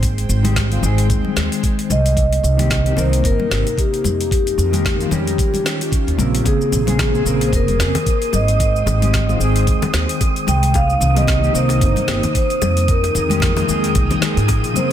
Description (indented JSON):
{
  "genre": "sunset chillout",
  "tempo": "112 BPM",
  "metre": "4/4",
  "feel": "swing 57% on 16ths",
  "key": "Ab major",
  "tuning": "A4 = 440 Hz",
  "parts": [
    { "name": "airy breathy pad", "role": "sustained chords", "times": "0.0-14.9 s", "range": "C3 to G5", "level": "-26 LUFS", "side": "equal", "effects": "chorus" },
    { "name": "upright bass", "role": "bass", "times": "0.0-14.7 s", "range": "F1 to Bb2", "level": "-18 LUFS", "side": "equal", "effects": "tube saturation" },
    { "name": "electronic kick drum", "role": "drums", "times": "0.0-14.6 s", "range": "none", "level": "-19 LUFS", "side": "equal", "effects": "none" },
    { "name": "smooth R&B drum kit", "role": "drums", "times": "0.0-14.9 s", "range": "hi-hat, shaker, snare drum", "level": "-25 LUFS", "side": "left 1 dB", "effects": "none" },
    { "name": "mellow electric guitar", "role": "accompaniment", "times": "0.4-14.9 s", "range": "Db3 to Bb4", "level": "-23 LUFS", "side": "left 1 dB", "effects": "auto-pan, digital delay" },
    { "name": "congas and bongos", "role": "percussion", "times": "0.4-14.9 s", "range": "none", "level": "-26 LUFS", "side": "left 4 dB", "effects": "none" },
    { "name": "vibraphone with soft mallets", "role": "melody", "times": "1.9-14.9 s", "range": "G4 to G5", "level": "-22 LUFS", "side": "left 1 dB", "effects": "digital delay" },
    { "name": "wind-like tuned noise texture", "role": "texture", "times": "6.8-14.9 s", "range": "Eb6", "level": "-26 LUFS", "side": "right 5 dB", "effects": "built-in reverb" }
  ],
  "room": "digital ambience",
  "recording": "dense, heavily limited modern master",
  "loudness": "-14 LUFS",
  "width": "side -10 dB against mid",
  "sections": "0.0-6.5 A section; 6.5-14.9 B section",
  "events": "filter sweep on clean electric guitar 0.0-6.5",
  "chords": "0.0 Abmaj7; 2.2 Cm7; 4.3 Fm11; 5.4 Eb9; 6.5 Bbm9; 8.3 Abmaj7; 10.7 Cm7; 12.9 Fm11"
}